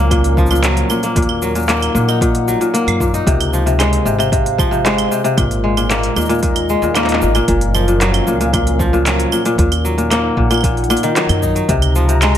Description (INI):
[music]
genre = folktronica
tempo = 114 BPM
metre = 4/4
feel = straight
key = Db major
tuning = A4 = 440 Hz
[part]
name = warbly tape-like pad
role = sustained chords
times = 0.0-12.4 s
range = Ab3 to Gb5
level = -24 LUFS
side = equal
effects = chorus, built-in reverb
[part]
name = kora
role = arpeggios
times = 0.0-12.4 s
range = Bb2 to Eb4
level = -16 LUFS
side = left 2 dB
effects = ping-pong delay, plate reverb
[part]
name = upright bass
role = bass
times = 0.0-12.4 s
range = Gb1 to Gb2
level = -18 LUFS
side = equal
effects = none
[part]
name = electronic kick drum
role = drums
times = 0.1-11.8 s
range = none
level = -19 LUFS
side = equal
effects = overdrive
[part]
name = organic electronic drum kit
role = drums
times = 0.1-12.4 s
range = claves, handclaps, hi-hat, shaker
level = -20 LUFS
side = right 2 dB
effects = overdrive
[part]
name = flickering grainy texture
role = texture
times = 11.9-12.4 s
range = Bb5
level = -25 LUFS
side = left 1 dB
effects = built-in reverb
[sound]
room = light reverb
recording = none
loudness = -13 LUFS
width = side -10 dB against mid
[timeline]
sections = 0.0-12.4 A section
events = none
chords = 0.0 Gbmaj7; 1.2 Ebm; 3.3 Dbmaj7; 5.4 Absus2; 7.5 Gbmaj7; 9.6 Ebm; 11.7 Dbmaj7